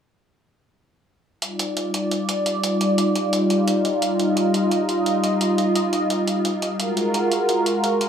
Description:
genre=liquid drum and bass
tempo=173 BPM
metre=4/4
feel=straight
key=Eb major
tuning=A4 = 439 Hz
part: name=warm analog pad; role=sustained chords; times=1.4-8.1 s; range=G3 to Eb5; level=-19 LUFS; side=equal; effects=chorus
part: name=electronic hi-hat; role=drums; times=1.4-8.1 s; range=none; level=-28 LUFS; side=right 1 dB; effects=none
room=moderate huge ambient reverb, RT60 4.1 s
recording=small room reverb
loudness=-19 LUFS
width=side -8 dB against mid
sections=1.4-8.1 A section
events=none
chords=1.4 Ebmaj9; 6.8 Gbmaj9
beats=| 1.42 1.77 2.11 2.46 | 2.81 3.15 3.50 3.85 | 4.20 4.54 4.89 5.24 | 5.58 5.93 6.28 6.62 | 6.97 7.32 7.66 8.01

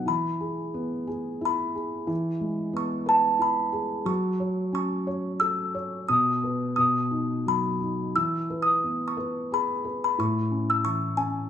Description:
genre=children's music, lullaby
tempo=90 BPM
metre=3/4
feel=rubato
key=E major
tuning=A4 = 442 Hz
part: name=felt-muted upright piano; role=accompaniment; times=0.0-11.5 s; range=A2 to D#5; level=-28 LUFS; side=equal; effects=none
part: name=music box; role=melody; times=0.1-11.5 s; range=G#5 to E6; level=-26 LUFS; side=equal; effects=none
room=moderate recital hall reverb, RT60 1.4 s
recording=none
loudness=-24 LUFS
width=side -9 dB against mid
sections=0.1-11.5 A section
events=none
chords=0.1 E; 4.1 F#m; 6.1 N.C.; 6.8 B; 8.2 E; 10.2 A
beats=| 0.08 0.77 1.44 | 2.10 2.77 3.42 | 4.09 4.76 5.43 | 6.10 6.77 7.46 | 8.16 8.84 9.52 | 10.19 10.85

